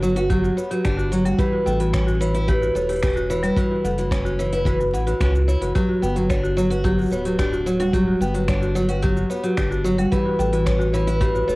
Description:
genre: folktronica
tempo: 110 BPM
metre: 4/4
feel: straight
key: G lydian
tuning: A4 = 435 Hz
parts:
  - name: buzzing marimba with medium hard mallets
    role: second line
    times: 0.0-11.6 s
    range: G3 to G5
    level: -24 LUFS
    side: left 1 dB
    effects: cassette tape, tape echo
  - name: picked steel-string acoustic guitar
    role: arpeggios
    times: 0.0-11.6 s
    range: E3 to F#4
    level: -23 LUFS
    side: equal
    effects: cassette tape, analog delay
  - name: round analog bass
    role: bass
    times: 0.0-11.6 s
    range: D1 to C#2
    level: -23 LUFS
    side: equal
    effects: none
  - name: organic electronic drum kit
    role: drums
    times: 0.0-11.6 s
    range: finger snaps, hi-hat, shaker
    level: -35 LUFS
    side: equal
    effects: none
  - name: kick drum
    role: drums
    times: 0.3-11.3 s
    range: none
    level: -24 LUFS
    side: equal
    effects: none
room: small room ambience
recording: home recording on cassette, vinyl crackle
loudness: -18 LUFS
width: side -21 dB against mid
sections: 0.0-11.6 A section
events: none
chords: 0.0 Gmaj7(no3); 1.4 A7; 3.6 F#m7; 5.8 Gmaj7(no3); 10.1 A7

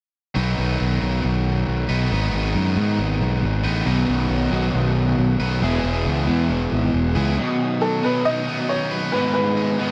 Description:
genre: rock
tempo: 137 BPM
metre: 4/4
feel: straight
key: B major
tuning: A4 = 442 Hz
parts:
  - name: cranked stack guitar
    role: riff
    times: 0.3-9.9 s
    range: E2 to B4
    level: -26 LUFS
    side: equal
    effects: overdrive
  - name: growling fingered electric bass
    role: bass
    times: 0.4-7.4 s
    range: E1 to G#2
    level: -24 LUFS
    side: equal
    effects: overdrive
  - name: overdriven semi-hollow guitar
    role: riff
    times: 3.9-9.9 s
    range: G#2 to F#4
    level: -26 LUFS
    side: equal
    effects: ensemble chorus, tape echo
  - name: bright upright piano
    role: melody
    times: 7.8-9.9 s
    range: A4 to D#5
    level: -25 LUFS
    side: equal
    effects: none
room: little or no reverb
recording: dry, close 1970s-style studio recording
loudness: -21 LUFS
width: mono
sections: 0.4-7.4 A section; 7.4-9.9 B section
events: none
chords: 0.4 B; 2.1 G#m; 3.9 B; 5.6 E; 7.4 B; 9.1 G#m

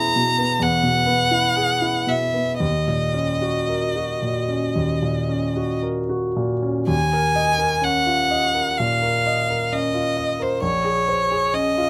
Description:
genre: classical, impressionist duo for violin and grand piano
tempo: 55-69 BPM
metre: 4/4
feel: rubato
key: unclear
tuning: A4 = 440 Hz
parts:
  - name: bright violin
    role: melody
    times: 0.0-11.9 s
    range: C5 to Bb5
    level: -23 LUFS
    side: equal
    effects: none
  - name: warm baby grand piano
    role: accompaniment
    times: 0.0-11.9 s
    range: Bb1 to Eb5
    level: -24 LUFS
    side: equal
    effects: none
room: little or no reverb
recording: close, detailed microphones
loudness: -21 LUFS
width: mono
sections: 0.0-6.9 A section; 6.9-11.9 A section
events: none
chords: 0.0 E; 2.6 Ebm7; 6.9 Ebm11; 10.6 Bbm9

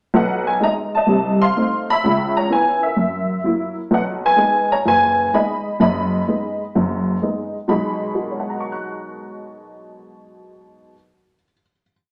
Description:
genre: solo jazz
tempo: 127 BPM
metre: 4/4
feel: swing 68% on 8ths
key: B major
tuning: A4 = 440 Hz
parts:
  - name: honky-tonk upright piano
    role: solo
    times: 0.1-11.9 s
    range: F#1 to F#6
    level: -19 LUFS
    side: equal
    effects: none
room: wet studio reverb, RT60 0.9 s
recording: lossy compression artefacts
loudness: -19 LUFS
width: mono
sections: 0.1-7.7 A section; 7.7-11.4 final chord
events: none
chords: 0.1 B6; 1.1 F7#11/C; 2.0 C#m7; 3.0 F#7; 3.9 B6

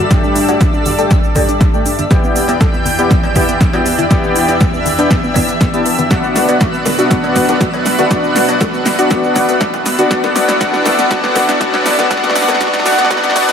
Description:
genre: progressive house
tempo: 120 BPM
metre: 4/4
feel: straight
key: E minor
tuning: A4 = 445 Hz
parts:
  - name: lush unison pad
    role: sustained chords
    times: 0.0-13.5 s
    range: E2 to G5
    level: -19 LUFS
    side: right 1 dB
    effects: chorus, sidechain pumping
  - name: wide unison pluck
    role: arpeggios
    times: 0.0-13.5 s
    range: B3 to A4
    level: -20 LUFS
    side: equal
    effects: sidechain pumping, tape echo
  - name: twinkling granular texture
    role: texture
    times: 0.0-13.5 s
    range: E5 to E6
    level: -25 LUFS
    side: right 2 dB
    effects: built-in reverb, sidechain pumping
  - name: soft supersaw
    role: stabs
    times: 0.1-13.5 s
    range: A3 to A5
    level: -15 LUFS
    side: left 1 dB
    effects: sidechain pumping, low-pass filter, tape echo
  - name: big-room dance drum kit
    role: drums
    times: 0.1-13.5 s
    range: hi-hat, shaker, snare drum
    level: -19 LUFS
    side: equal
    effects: overdrive
  - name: electronic kick drum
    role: drums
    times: 0.1-13.5 s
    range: none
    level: -15 LUFS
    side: equal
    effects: overdrive
  - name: cowbell, congas and bongos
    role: percussion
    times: 0.5-13.5 s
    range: none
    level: -25 LUFS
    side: left 3 dB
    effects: none
  - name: riser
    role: sound effects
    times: 8.7-13.5 s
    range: none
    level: -28 LUFS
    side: right 1 dB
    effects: none
room: moderate digital room reverb, RT60 1.1 s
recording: high-pass filter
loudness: -10 LUFS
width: side -7 dB against mid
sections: 0.0-13.5 A section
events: build-up 0.0-13.5; drum fill 0.0-13.5; filter sweep on synth pluck 0.0-13.5; filter sweep on supersaw synth 0.0-13.5; filter sweep 0.0-13.5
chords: 0.0 Gsus2; 2.1 Em7; 6.1 Bm; 10.1 A5

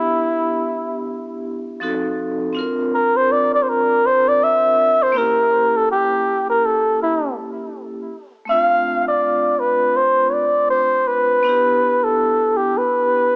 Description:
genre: hip hop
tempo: 81 BPM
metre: 4/4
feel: swing 58% on 16ths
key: unclear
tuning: A4 = 440 Hz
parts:
  - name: breathy flugelhorn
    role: melody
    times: 0.0-13.4 s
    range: Fb4 to F5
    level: -15 LUFS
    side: equal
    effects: cassette tape, analog delay
  - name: vibraphone with hard mallets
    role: accompaniment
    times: 0.0-13.4 s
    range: F3 to Bb4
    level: -24 LUFS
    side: equal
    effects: cassette tape
room: moderate spring reverb, RT60 1.2 s, small room ambience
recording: home recording on cassette, small speaker sound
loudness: -15 LUFS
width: side -39 dB against mid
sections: 0.0-8.5 A section; 8.5-13.4 B section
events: flugelhorn solo 0.0-8.5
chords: 0.0 G6/B; 1.8 F7b9; 2.6 Bb; 5.2 Bbdim7; 8.5 Dm7; 11.4 G69/B

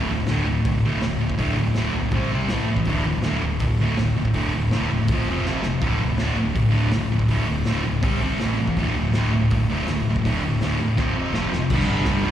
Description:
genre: garage rock duo or trio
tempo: 163 BPM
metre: 4/4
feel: straight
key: unclear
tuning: A4 = 443 Hz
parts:
  - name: thick fuzz guitar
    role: riff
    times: 0.0-12.3 s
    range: D2 to C4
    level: -21 LUFS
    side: equal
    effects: distortion
  - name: growling picked electric bass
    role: bass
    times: 0.0-12.3 s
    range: D1 to C2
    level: -26 LUFS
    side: equal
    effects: overdrive
  - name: raw garage drum kit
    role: drums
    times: 0.3-12.2 s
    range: crash cymbal, hi-hat, kick drum, snare drum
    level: -27 LUFS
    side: equal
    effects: none
room: little or no reverb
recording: live gig heard through the venue's PA, recital hall reverb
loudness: -19 LUFS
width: side -10 dB against mid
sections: 0.0-11.7 A section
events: drum fill 5.4-5.8, 11.0-11.7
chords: 0.0 D5; 2.1 C5; 2.5 A5; 2.9 D5; 5.1 F5; 5.8 D5; 8.0 C5; 8.4 A5; 8.8 D5; 11.0 F5; 11.7 G5

